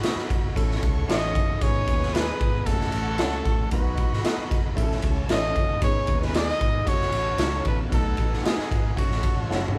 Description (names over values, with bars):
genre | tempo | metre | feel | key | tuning
uptempo 1960s-style soul | 114 BPM | 4/4 | straight | F# dorian | A4 = 440 Hz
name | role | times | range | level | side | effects
clear trumpet | melody | 0.0-9.7 s | F#4 to D#5 | -31 LUFS | equal | none
rich studio violin section | second line | 0.0-9.8 s | C#4 to D#6 | -39 LUFS | equal | none
vibraphone with medium hard mallets | second line | 0.0-9.7 s | F#3 to D#4 | -42 LUFS | equal | none
warm concert grand piano | accompaniment | 0.0-9.8 s | E3 to B4 | -36 LUFS | equal | none
clean electric guitar | stabs | 0.0-9.8 s | F#4 to F#5 | -37 LUFS | equal | none
raw garage drum kit | drums | 0.0-9.8 s | kick drum, ride cymbal, snare drum, toms | -27 LUFS | equal | none
vintage muted fingered electric bass | bass | 0.2-9.8 s | F#1 to D#2 | -32 LUFS | equal | none
room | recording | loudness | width
light reverb | band playing live in one room, vinyl crackle | -24 LUFS | mono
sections
0.0-9.8 A section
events
drum fill 9.5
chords
0.0 B; 0.6 A; 1.6 G#m; 2.7 F#m; 3.7 B; 4.8 A; 5.8 G#m; 6.9 F#m; 7.9 B; 9.0 F#m